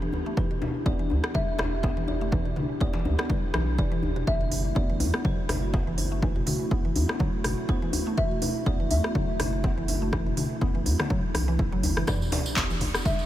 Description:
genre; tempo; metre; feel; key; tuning
afro house; 123 BPM; 4/4; swing 56% on 16ths; E minor; A4 = 441 Hz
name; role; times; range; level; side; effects
kalimba; melody; 0.0-13.3 s; A4 to E5; -36 LUFS; left 1 dB; analog delay
dark analog pad; sustained chords; 0.0-13.3 s; A3 to G4; -34 LUFS; right 1 dB; chorus, sidechain pumping
mallet-like synth pluck; arpeggios; 0.0-13.2 s; B2 to E4; -33 LUFS; equal; analog chorus, sidechain pumping, analog delay
djembe; percussion; 0.1-13.2 s; none; -34 LUFS; left 2 dB; none
electronic kick drum; drums; 0.4-13.2 s; none; -28 LUFS; equal; none
warm sub bass; bass; 0.9-12.9 s; E1 to F#2; -29 LUFS; equal; tube saturation, sidechain pumping
afro-pop drum kit; drums; 1.2-13.2 s; handclaps, hi-hat, rim click, toms; -32 LUFS; equal; none
tambourine; percussion; 12.1-13.3 s; none; -39 LUFS; right 3 dB; none
sub drop; sound effects; 12.1-13.3 s; none; -34 LUFS; equal; none
room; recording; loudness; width
light reverb; none; -24 LUFS; side -13 dB against mid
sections
0.0-12.1 A section; 12.1-13.3 B section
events
drop 12.1-13.3; impact 12.1-13.3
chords
0.0 Em7; 4.3 F#m7b5; 12.1 Em7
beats
| 0.37 0.86 1.35 1.83 | 2.32 2.81 3.30 3.79 | 4.27 4.76 5.25 5.74 | 6.22 6.71 7.20 7.69 | 8.18 8.66 9.15 9.64 | 10.13 10.62 11.10 11.59 | 12.08 12.57 13.05

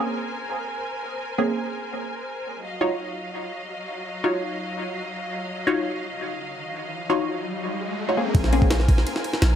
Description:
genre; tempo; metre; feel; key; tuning
drum and bass, jungle; 168 BPM; 4/4; straight; Bb minor; A4 = 440 Hz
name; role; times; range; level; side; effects
bright symphonic string section; sustained chords; 0.0-9.6 s; Gb3 to Ab5; -31 LUFS; equal; none
filtered dub chord stab; stabs; 0.0-9.6 s; Bb3 to Db5; -26 LUFS; left 1 dB; phaser, dub echo
riser; sound effects; 6.4-8.3 s; none; -33 LUFS; equal; none
warm 808-style bass; bass; 8.3-9.6 s; Bb1; -20 LUFS; equal; none
jungle sampler-style drum kit; drums; 8.3-9.5 s; kick drum, ride cymbal, snare drum; -21 LUFS; equal; none
room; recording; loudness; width
light reverb, digital ambience; none; -24 LUFS; side -9 dB against mid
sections
0.0-8.3 A section; 8.3-9.6 B section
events
riser 6.4-8.3; drop 8.3-9.6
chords
0.0 Bbm9; 2.6 Ebm9; 8.3 Bbm9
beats
0.13 0.49 0.85 | 1.21 1.56 1.92 2.28 | 2.63 2.99 3.35 3.71 | 4.06 4.42 4.78 5.13 | 5.49 5.85 6.21 6.56 | 6.92 7.28 7.63 7.99 | 8.35 8.71 9.06 9.42

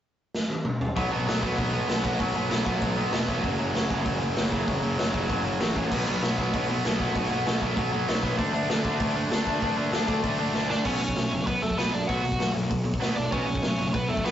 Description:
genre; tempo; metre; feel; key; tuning
punk rock; 194 BPM; 4/4; straight; B minor; A4 = 439 Hz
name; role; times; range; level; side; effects
raw garage drum kit; drums; 0.3-14.3 s; crash cymbal, hi-hat, kick drum, snare drum, toms; -28 LUFS; equal; none
crunchy overdriven guitar; riff; 1.0-14.3 s; F#2 to D4; -28 LUFS; equal; none
fuzz picked electric bass; bass; 1.0-14.3 s; E1 to B2; -31 LUFS; equal; overdrive
biting lead guitar; melody; 10.7-14.3 s; A3 to F#5; -29 LUFS; right 1 dB; overdrive, ping-pong delay
room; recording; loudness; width
light reverb; rough rehearsal-room recording, warm saturation, nothing above 7.8 kHz; -24 LUFS; side -10 dB against mid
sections
1.0-10.9 A section; 10.9-14.3 B section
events
drum fill 0.3-1.0, 10.5-10.9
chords
0.0 N.C.; 1.0 B5; 3.4 F#5; 5.9 B5; 8.4 D5; 10.9 B5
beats
0.03 0.34 0.65 | 0.96 1.27 1.58 1.89 | 2.20 2.51 2.82 3.13 | 3.44 3.75 4.06 4.37 | 4.68 4.99 5.30 5.61 | 5.92 6.23 6.54 6.84 | 7.15 7.46 7.77 8.08 | 8.39 8.70 9.01 9.31 | 9.62 9.93 10.24 10.55 | 10.86 11.16 11.47 11.78 | 12.09 12.40 12.71 13.02 | 13.32 13.63 13.94 14.25

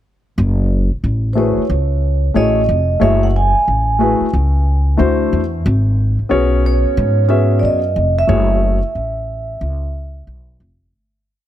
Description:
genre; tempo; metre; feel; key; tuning
hip hop, jazz-hop; 91 BPM; 4/4; swing 62% on 16ths; F# dorian; A4 = 439 Hz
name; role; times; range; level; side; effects
upright bass; bass; 0.4-10.9 s; E#1 to G#2; -16 LUFS; equal; none
vibraphone with soft mallets; melody; 1.3-10.2 s; B#4 to G#5; -19 LUFS; right 3 dB; none
dark grand piano; accompaniment; 1.4-8.8 s; A3 to E5; -18 LUFS; left 3 dB; none
room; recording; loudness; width
studio reverb; none; -13 LUFS; side -12 dB against mid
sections
0.4-10.9 A section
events
fade-out 8.3-10.9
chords
0.4 F#m9; 5.0 D9; 5.6 C#7sus4/G#; 8.3 F#m9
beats
| 0.37 1.03 1.69 2.35 | 3.01 3.67 4.33 4.99 | 5.65 6.31 6.97 7.63 | 8.29 8.95 9.60 10.26

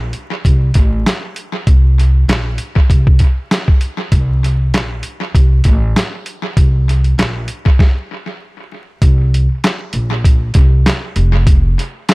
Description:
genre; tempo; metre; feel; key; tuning
hip hop, boom-bap hip-hop; 98 BPM; 4/4; swing 56% on 16ths; unclear; A4 = 440 Hz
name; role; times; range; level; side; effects
upright bass; bass; 0.0-11.7 s; F1 to C2; -13 LUFS; equal; none
boom bap sampler-style drum kit; drums; 0.1-12.1 s; handclaps, hi-hat, kick drum, snare drum; -12 LUFS; equal; tape echo
room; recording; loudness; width
little or no reverb; echo-heavy mix, vinyl crackle; -11 LUFS; side -24 dB against mid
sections
0.0-9.0 A section; 9.0-12.1 B section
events
stop 7.8-9.0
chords
none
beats
0.45 1.06 | 1.67 2.28 2.90 3.51 | 4.12 4.73 5.34 5.96 | 6.57 7.18 7.79 8.40 | 9.02 9.63 10.24 10.85 | 11.47 12.08

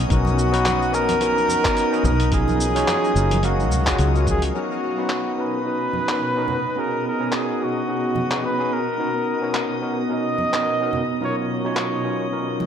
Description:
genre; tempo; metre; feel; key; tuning
sunset chillout; 108 BPM; 4/4; swing 57% on 16ths; B lydian; A4 = 440 Hz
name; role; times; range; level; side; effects
shimmering ambient pad; sustained chords; 0.0-12.7 s; B2 to A#5; -28 LUFS; right 1 dB; chorus, built-in reverb
fingered electric bass; bass; 0.0-4.5 s; F#1 to C#2; -21 LUFS; equal; tube saturation
drifting glass-harmonics texture; texture; 0.0-12.7 s; D#5 to D#6; -34 LUFS; right 1 dB; chorus, built-in reverb
warm flugelhorn; melody; 0.1-12.6 s; F#4 to D#5; -24 LUFS; equal; tape echo
overdriven tine electric piano; accompaniment; 0.1-12.7 s; B2 to E#5; -25 LUFS; moving between left 4 dB and right 4 dB; auto-pan, tape echo
dusty soul sampler-style drum kit; drums; 0.1-11.9 s; handclaps, hi-hat, shaker; -27 LUFS; left 1 dB; none
electronic kick drum; drums; 0.1-4.4 s; none; -24 LUFS; equal; none
congas; percussion; 0.2-12.7 s; none; -32 LUFS; right 2 dB; tape echo
room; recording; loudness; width
moderate plate reverb, RT60 1.7 s, digital ambience; echo-heavy mix; -19 LUFS; side -8 dB against mid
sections
0.0-4.5 A section; 4.5-12.7 B section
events
filter sweep on ambient pad 4.5-12.7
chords
0.1 Bmaj7; 2.3 D#m7/B; 3.4 F#maj7; 4.5 Bmaj7; 6.8 C#7sus4/B; 9.0 Bmaj7; 11.2 D#m7/B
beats
| 0.11 0.66 1.22 1.77 | 2.33 2.88 3.44 4.00 | 4.55 5.11 5.66 6.22 | 6.77 7.33 7.88 8.44 | 8.99 9.55 10.11 10.66 | 11.22 11.77 12.33

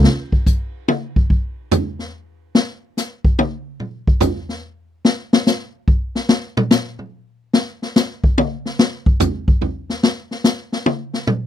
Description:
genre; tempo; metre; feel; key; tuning
jazz; 144 BPM; 3/4; swing 67% on 8ths; none; none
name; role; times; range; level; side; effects
swinging big-band drum kit; drums; 0.0-11.4 s; hi-hat, kick drum, snare drum, toms; -16 LUFS; left 1 dB; none
room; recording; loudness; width
little or no reverb; dry, close 1970s-style studio recording; -16 LUFS; side -10 dB against mid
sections
0.1-10.0 A section; 10.0-11.5 A section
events
drum solo 0.1-11.5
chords
none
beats
| 0.06 0.47 0.89 | 1.31 1.72 2.14 | 2.55 2.97 3.39 | 3.80 4.22 4.63 | 5.05 5.46 5.88 | 6.29 6.71 7.12 | 7.54 7.96 8.37 | 8.79 9.20 9.62 | 10.03 10.45 10.86 | 11.28

